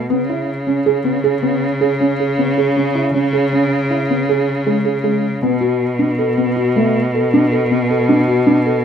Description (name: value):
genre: contemporary instrumental, chamber music in an uneven meter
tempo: 158 BPM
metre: 7/4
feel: straight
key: unclear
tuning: A4 = 443 Hz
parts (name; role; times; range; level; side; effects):
- rich cello; bass; 0.0-8.8 s; B2 to C#3; -17 LUFS; equal; none
- felt-muted upright piano; arpeggios; 0.1-8.8 s; G#3 to A4; -16 LUFS; right 1 dB; none
room: moderate studio reverb, RT60 0.6 s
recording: minimal, uncompressed stereo recording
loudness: -14 LUFS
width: side -8 dB against mid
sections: 0.0-8.8 A section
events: none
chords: 0.1 C#5; 5.4 B7(no3)